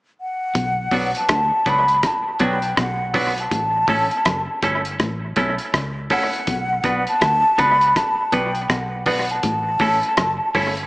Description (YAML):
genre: roots reggae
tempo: 81 BPM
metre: 4/4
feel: swing 61% on 16ths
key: B minor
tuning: A4 = 440 Hz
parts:
  - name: mellow hollow concert flute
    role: melody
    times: 0.2-10.8 s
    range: F#5 to B5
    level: -19 LUFS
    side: equal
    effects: tape echo
  - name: clean electric guitar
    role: riff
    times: 0.5-10.8 s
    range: F#2 to D3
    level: -29 LUFS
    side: left 2 dB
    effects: none
  - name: vintage muted fingered electric bass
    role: bass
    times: 0.6-10.9 s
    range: F#1 to D2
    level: -29 LUFS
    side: equal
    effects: none
  - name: cloth-damped thuddy drum kit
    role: drums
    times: 0.6-10.9 s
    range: hi-hat, kick drum, rim click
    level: -24 LUFS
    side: equal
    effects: analog delay
  - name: semi-hollow electric guitar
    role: accompaniment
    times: 0.9-10.7 s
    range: F#3 to B4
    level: -23 LUFS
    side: right 1 dB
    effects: tape echo
room: wet spring reverb, RT60 2.1 s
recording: echo-heavy mix, small speaker sound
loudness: -17 LUFS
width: side -21 dB against mid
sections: 0.6-10.9 A section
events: none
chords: 0.0 N.C.; 0.6 Bm; 3.5 A; 6.5 Bm; 9.4 A